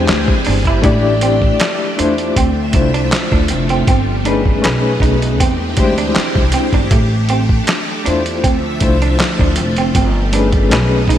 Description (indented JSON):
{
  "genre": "R&B, neo-soul",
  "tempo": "79 BPM",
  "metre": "4/4",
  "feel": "swing 54% on 16ths",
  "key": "D dorian",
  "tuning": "A4 = 439 Hz",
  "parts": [
    { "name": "electric guitar through a small old amp", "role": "second line", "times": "0.0-11.2 s", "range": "A3 to E4", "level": "-22 LUFS", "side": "right 6 dB", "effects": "slapback echo" },
    { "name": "reed electric piano", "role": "accompaniment", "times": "0.0-11.2 s", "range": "G#3 to D5", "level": "-18 LUFS", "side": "left 3 dB", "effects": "overdrive, tremolo, slapback echo" },
    { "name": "string machine, violins", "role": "sustained chords", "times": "0.0-11.2 s", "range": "D3 to E5", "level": "-21 LUFS", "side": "equal", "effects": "ensemble chorus" },
    { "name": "upright bass", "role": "bass", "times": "0.0-11.2 s", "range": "F1 to E2", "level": "-17 LUFS", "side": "equal", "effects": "none" },
    { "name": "boom bap sampler-style drum kit", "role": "drums", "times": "0.1-11.2 s", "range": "handclaps, hi-hat, kick drum, snare drum", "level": "-16 LUFS", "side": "equal", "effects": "none" }
  ],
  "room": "moderate lush hall reverb, RT60 2.8 s",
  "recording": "big arena sound",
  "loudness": "-12 LUFS",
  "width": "side -11 dB against mid",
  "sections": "0.0-11.2 A section",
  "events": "none",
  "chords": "0.0 E7alt; 0.8 A7sus4; 2.4 Dm9; 3.9 G7(no3); 4.6 B13; 5.4 E7alt; 6.9 A7sus4; 8.4 Dm9; 9.9 G7(no3)",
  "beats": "0.08 | 0.84 1.59 2.35 3.11 | 3.87 4.63 5.39 6.15 | 6.91 7.67 8.43 9.19 | 9.95 10.71"
}